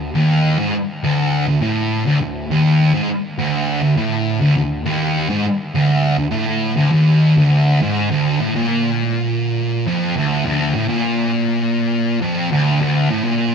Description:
metal; 102 BPM; 4/4; straight; A4 = 438 Hz
thick fuzz guitar; solo; 0.0-13.5 s; D2 to Bb2; -15 LUFS; equal; distortion, tape echo
moderate studio reverb, RT60 0.8 s; band playing live in one room; -15 LUFS; side -6 dB against mid
0.0-8.1 A section; 8.1-13.5 B section
0.44 | 1.03 1.62 2.21 2.79 | 3.38 3.97 4.56 5.15 | 5.74 6.33 6.92 7.51 | 8.10 8.69 9.27 9.86 | 10.45 11.04 11.62 12.21 | 12.80 13.39

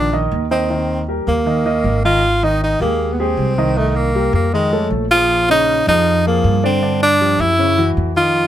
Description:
Afro-Cuban jazz; 157 BPM; 4/4; straight; Ab major; A4 = 440 Hz
breathy tenor saxophone; melody; 0.0-8.5 s; G#3 to F4; -16 LUFS; equal
warm concert grand piano; accompaniment; 0.0-8.5 s; Db3 to Eb5; -20 LUFS; equal
upright bass; bass; 0.0-8.5 s; Ab1 to G2; -19 LUFS; equal
little or no reverb; close, detailed microphones; -13 LUFS; side -11 dB against mid
0.0-2.2 A section; 2.2-8.5 B section
0.0 Eb; 1.5 Eb5; 2.2 Abmaj7; 3.8 Cm7; 4.5 F7alt; 5.3 Bbm7; 6.8 G5; 7.6 Gb5
0.32 | 0.70 1.08 1.47 1.85 | 2.23 2.62 3.00 3.38 | 3.77 4.15 4.53 4.92 | 5.30 5.68 6.06 6.45 | 6.83 7.21 7.59 7.97 | 8.36

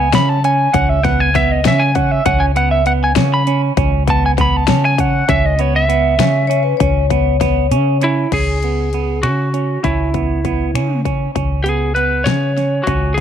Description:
progressive instrumental, band music in an uneven meter; 198 BPM (eighths); 5/8; straight; C# minor; A4 = 441 Hz
lightly driven lead guitar; melody; 0.0-13.2 s; E4 to B5; -17 LUFS; equal
semi-hollow electric guitar; arpeggios; 0.0-13.2 s; B3 to C#4; -21 LUFS; right 11 dB
woody fretless electric bass; bass; 0.0-13.2 s; C#2 to C#3; -17 LUFS; equal
big-room dance drum kit; drums; 0.1-13.2 s; crash cymbal, finger snaps, hi-hat, kick drum, snare drum; -20 LUFS; left 5 dB; overdrive
vibraphone with medium hard mallets; second line; 6.5-8.0 s; B4 to C#5; -19 LUFS; left 16 dB
light reverb, digital ambience; 1960s-style stereo with parts hard left and right; -13 LUFS; side -9 dB against mid
0.0-8.3 A section; 8.3-13.2 B section
lead electric guitar solo 0.0-8.3; kick and snare drop out 7.7-8.3
0.0 C#m7
0.13 0.44 | 0.74 1.04 1.35 1.65 1.95 | 2.25 2.56 2.86 3.16 3.47 | 3.77 4.07 4.38 4.68 4.98 | 5.29 5.59 5.89 6.19 6.50 | 6.80 7.10 7.41 7.71 8.01 | 8.32 8.62 8.92 9.23 9.53 | 9.83 10.14 10.44 10.74 11.05 | 11.35 11.65 11.96 12.26 12.56 | 12.87 13.17

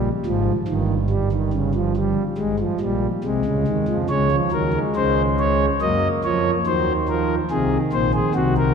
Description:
classical, baroque-style 4-part fugue for pipe organ; 70 BPM; 4/4; straight; Db major; A4 = 440 Hz
pipe organ, principal; solo; 0.0-8.7 s; G1 to Eb5; -18 LUFS; equal
wet church reverb, RT60 2.9 s; -18 LUFS; side -6 dB against mid
0.0-4.1 A section; 4.1-8.7 B section
0.0 Bb5; 0.7 Eb/G; 2.4 Ab; 4.1 Db5; 5.8 Ebm; 7.5 Ab7
| 0.67 1.53 2.38 3.23 | 4.09 4.95 5.81 6.67 | 7.52 8.37

